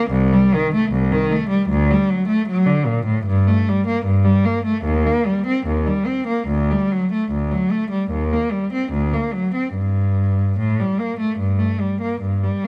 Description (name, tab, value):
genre	classical, baroque-style suite movement for unaccompanied cello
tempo	75 BPM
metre	4/4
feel	uneven beats, rubato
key	G minor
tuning	A4 = 440 Hz
part	rich cello	solo	0.0-12.7 s	C2 to C4	-19 LUFS	equal	none
room	light reverb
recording	close, detailed microphones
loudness	-19 LUFS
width	mono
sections	0.0-12.7 A section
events	none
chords	none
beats	| 0.11 0.92 1.70 2.48 | 3.26 4.05 4.85 5.65 | 6.47 7.29 8.09 8.90 | 9.73 10.58 11.40 12.23